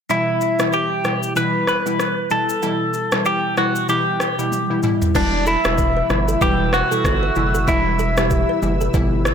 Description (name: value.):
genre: afrobeats.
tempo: 95 BPM.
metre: 4/4.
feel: swing 58% on 16ths.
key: unclear.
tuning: A4 = 440 Hz.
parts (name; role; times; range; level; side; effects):
direct-recorded clean electric guitar; melody; 0.1-8.6 s; D4 to B4; -20 LUFS; equal; phaser, tape echo.
glassy wavetable pluck; accompaniment; 0.1-9.3 s; B2 to E4; -22 LUFS; left 1 dB; chorus.
afro-pop drum kit; drums; 0.1-9.3 s; crash cymbal, kick drum, rim click, shaker, toms; -22 LUFS; equal; soft clipping on snare.
lush unison pad; sustained chords; 5.2-9.3 s; B4 to E6; -30 LUFS; left 1 dB; chorus, phaser.
kalimba; riff; 5.2-9.3 s; G4 to B4; -28 LUFS; right 9 dB; tape echo.
round analog bass; bass; 5.2-9.3 s; E1 to G1; -22 LUFS; equal; none.
room: light reverb, digital ambience.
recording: blown-out, overdriven recording, overdrive.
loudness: -16 LUFS.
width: side -7 dB against mid.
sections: 0.1-5.2 A section; 5.2-9.3 B section.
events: drum fill 4.5-5.2.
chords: 0.1 Em.